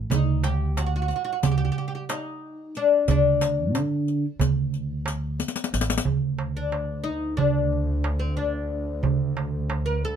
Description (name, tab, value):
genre	Turkish makam ensemble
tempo	182 BPM (eighths)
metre	9/8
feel	straight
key	D makam hicaz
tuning	A4 = 437 Hz
part	upright bass	bass	0.0-10.0 s	A1 to D3	-26 LUFS	equal	none
part	oud	melody	0.1-10.2 s	C4 to B4-40c	-26 LUFS	left 5 dB	none
part	darbuka	percussion	0.1-10.1 s	none	-25 LUFS	right 7 dB	none
part	riq	percussion	0.1-6.1 s	none	-28 LUFS	left 7 dB	none
part	warm double bass	drone	6.1-10.2 s	D2	-33 LUFS	right 1 dB	none
room	light reverb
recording	close, detailed microphones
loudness	-22 LUFS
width	side -8 dB against mid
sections	0.0-6.1 A section; 6.1-10.2 B section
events	drum fill 5.4-6.1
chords	none